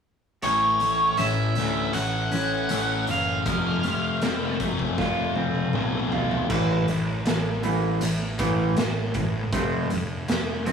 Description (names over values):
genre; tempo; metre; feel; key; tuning
quiet-loud alternative rock; 79 BPM; 4/4; straight; unclear; A4 = 439 Hz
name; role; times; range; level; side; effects
octave-fuzz lead guitar; melody; 0.4-4.6 s; C#5 to F#5; -25 LUFS; right 1 dB; distortion
electric guitar through a small old amp; arpeggios; 0.4-10.7 s; A2 to F4; -27 LUFS; equal; none
thick fuzz guitar; riff; 0.4-6.5 s; A2 to C4; -28 LUFS; left 5 dB; distortion
fuzz picked electric bass; bass; 0.4-10.7 s; F1 to D2; -30 LUFS; right 1 dB; overdrive
raw garage drum kit; drums; 0.4-10.7 s; crash cymbal, hi-hat, kick drum, snare drum, toms; -29 LUFS; right 1 dB; none
room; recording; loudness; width
moderate studio ambience, RT60 0.5 s; rough rehearsal-room recording, studio ambience; -22 LUFS; side -7 dB against mid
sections
0.4-6.5 A section; 6.5-10.7 B section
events
drum fill 5.0-6.5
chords
0.4 A; 3.5 F; 6.5 A5; 9.5 F